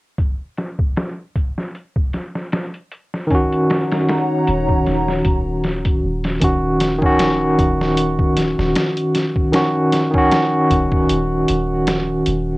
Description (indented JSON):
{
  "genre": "trip hop",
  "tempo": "77 BPM",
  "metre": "4/4",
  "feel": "swing 55% on 16ths",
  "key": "Eb minor",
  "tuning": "A4 = 440 Hz",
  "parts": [
    { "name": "trip hop sampler-style drum kit", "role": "drums", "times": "0.2-12.5 s", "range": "hi-hat, kick drum, snare drum", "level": "-20 LUFS", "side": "equal", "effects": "low-pass filter on kick, cassette tape, low-pass filter on hats, low-pass filter on snare" },
    { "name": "barky tine electric piano", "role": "accompaniment", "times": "3.3-12.6 s", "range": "Eb3 to Gb4", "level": "-16 LUFS", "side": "equal", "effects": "tremolo, vintage 12-bit sampler grit, low-pass filter, cassette tape, tape echo" },
    { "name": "dark analog pad", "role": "sustained chords", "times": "3.8-6.4 s", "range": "Eb4 to Bb5", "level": "-23 LUFS", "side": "equal", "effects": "chorus, cassette tape" },
    { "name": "soft 808-style bass", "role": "bass", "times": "4.5-12.6 s", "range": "Eb1", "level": "-25 LUFS", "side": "equal", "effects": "none" }
  ],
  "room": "light reverb",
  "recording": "home recording on cassette",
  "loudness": "-16 LUFS",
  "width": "side -20 dB against mid",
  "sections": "0.2-6.4 A section; 6.4-12.6 B section",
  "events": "filter sweep on tine electric piano 6.4-12.6",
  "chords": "0.2 Ebm7"
}